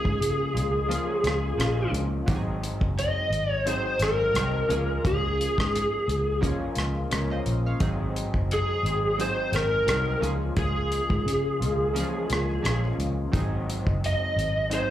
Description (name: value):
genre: indie pop, bedroom pop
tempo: 87 BPM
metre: 4/4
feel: swing 55% on 16ths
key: Db major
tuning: A4 = 439 Hz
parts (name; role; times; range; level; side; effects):
- overdriven slide guitar; melody; 0.0-14.9 s; Ab4 to Eb5; -26 LUFS; equal; ensemble chorus, slapback echo
- chorused retro synth keys; accompaniment; 0.0-14.9 s; Fb3 to F5; -34 LUFS; right 3 dB; cassette tape, slapback echo
- electric guitar through a small old amp; accompaniment; 0.0-14.9 s; Ab2 to F4; -35 LUFS; left 4 dB; ensemble chorus, vibrato effect, slapback echo
- vintage muted fingered electric bass; bass; 0.0-14.8 s; Gb1 to Db3; -28 LUFS; equal; none
- damped 70s drum kit; drums; 0.1-14.9 s; hi-hat, kick drum, rim click; -29 LUFS; equal; none
room: light reverb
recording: live gig heard through the venue's PA, club reverb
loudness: -23 LUFS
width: side -12 dB against mid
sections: 0.0-14.9 A section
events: none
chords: 0.0 Db6; 2.3 Ab7; 4.7 Db6; 7.8 Ab7; 10.2 Db6; 13.3 Ab7